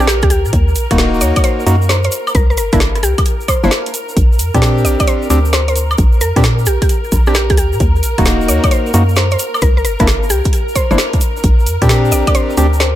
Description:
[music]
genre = UK garage, two-step garage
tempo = 132 BPM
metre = 4/4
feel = swing 67% on 16ths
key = unclear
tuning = A4 = 441 Hz
[part]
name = mallet-like synth pluck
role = melody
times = 0.0-12.9 s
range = G4 to D5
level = -20 LUFS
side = equal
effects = chorus, analog delay
[part]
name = soft string machine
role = sustained chords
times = 0.0-13.0 s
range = Bb4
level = -24 LUFS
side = left 1 dB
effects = ensemble chorus, sidechain pumping
[part]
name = percussive organ stab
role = stabs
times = 0.0-12.7 s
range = Bb3 to G4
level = -18 LUFS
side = equal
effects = chorus, analog delay
[part]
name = hollow knocking FM bass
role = bass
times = 0.0-13.0 s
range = Eb1 to Bb2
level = -14 LUFS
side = equal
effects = none
[part]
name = egg shaker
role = percussion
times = 0.0-12.9 s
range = none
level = -26 LUFS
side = right 1 dB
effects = none
[part]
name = garage drum kit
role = drums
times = 0.1-12.9 s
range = hi-hat, rim click, snare drum, woodblock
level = -19 LUFS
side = equal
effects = none
[part]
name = electronic kick drum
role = drums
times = 0.2-12.3 s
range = none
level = -15 LUFS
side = equal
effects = none
[sound]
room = light reverb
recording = echo-heavy mix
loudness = -11 LUFS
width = side -13 dB against mid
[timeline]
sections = 0.0-13.0 A section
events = break 3.7-4.2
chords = 0.0 Bb6; 0.5 Ebm; 2.1 C9; 4.2 Bb69; 7.8 Ebm; 9.4 C9; 11.4 Bb69

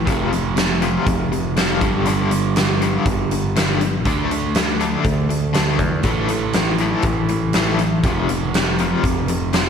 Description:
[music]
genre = classic rock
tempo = 121 BPM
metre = 4/4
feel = straight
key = unclear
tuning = A4 = 440 Hz
[part]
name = crunchy overdriven guitar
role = riff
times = 0.0-9.7 s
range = F2 to D4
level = -23 LUFS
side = left 8 dB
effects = tremolo, slapback echo
[part]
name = overdriven semi-hollow guitar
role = riff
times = 0.0-9.7 s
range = F2 to D4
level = -23 LUFS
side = right 7 dB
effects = spring reverb, slapback echo
[part]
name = picked electric bass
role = bass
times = 0.0-9.7 s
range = F1 to E2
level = -24 LUFS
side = equal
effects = none
[part]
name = huge arena drum kit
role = drums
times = 0.1-9.7 s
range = hi-hat, kick drum, snare drum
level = -20 LUFS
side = left 1 dB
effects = none
[sound]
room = moderate lush hall reverb, RT60 1.7 s, small room ambience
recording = big arena sound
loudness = -16 LUFS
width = side -7 dB against mid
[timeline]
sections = 0.0-9.7 A section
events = none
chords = 0.1 F5; 1.8 G5; 4.1 D5; 6.0 A5; 8.0 F5

